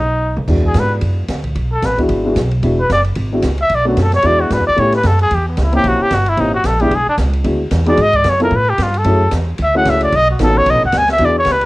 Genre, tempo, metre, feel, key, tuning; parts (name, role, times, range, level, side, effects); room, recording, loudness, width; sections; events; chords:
jazz, small-group swing and bop; 224 BPM; 4/4; swing 58% on 8ths; E mixolydian; A4 = 440 Hz
breathy trumpet; melody; 0.0-11.7 s; B3 to G#5; -14 LUFS; equal; cassette tape
upright bass; bass; 0.0-11.7 s; E1 to B2; -17 LUFS; equal
open jazz drum kit; drums; 0.4-11.7 s; crash cymbal, hi-hat, kick drum, ride cymbal, snare drum, toms; -25 LUFS; equal; cassette tape
dark baby grand piano; accompaniment; 0.5-11.3 s; G#3 to A4; -18 LUFS; left 1 dB; cassette tape
light reverb; home recording on cassette; -12 LUFS; side -20 dB against mid
0.5-11.7 A section
drum fill 0.2; trumpet solo 0.5-11.7
0.5 E9; 3.7 Bm7; 4.2 E9; 4.8 A9; 5.8 A#dim7; 6.9 E9; 8.0 G#m7; 8.5 G9; 9.1 F#m7; 10.1 B9